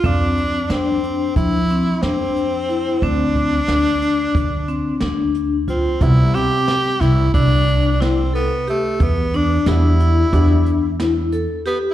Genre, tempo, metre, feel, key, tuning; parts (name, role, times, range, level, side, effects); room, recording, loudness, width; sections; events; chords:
progressive instrumental, band music in an uneven meter; 181 BPM (eighths); 9/8; straight; A4 = 440 Hz
bright tenor saxophone; melody; 0.0-11.9 s; A3 to G4; -22 LUFS; right 1 dB; slapback echo
vibraphone with medium hard mallets; arpeggios; 0.0-11.9 s; C4 to A4; -21 LUFS; left 4 dB; slapback echo, tape echo
upright bass; bass; 0.0-11.4 s; C2 to F3; -18 LUFS; right 1 dB
jazz brush drum kit; drums; 0.0-11.8 s; hi-hat, kick drum, snare drum; -23 LUFS; right 1 dB
clear baby grand piano; accompaniment; 6.0-10.6 s; C3 to G4; -26 LUFS; right 2 dB; slapback echo
little or no reverb; live gig heard through the venue's PA, recital hall reverb; -15 LUFS; side -13 dB against mid
0.0-6.0 A section; 6.0-11.9 B section
0.0 F5; 3.0 D7(no3); 6.0 Cmaj7; 9.0 Em7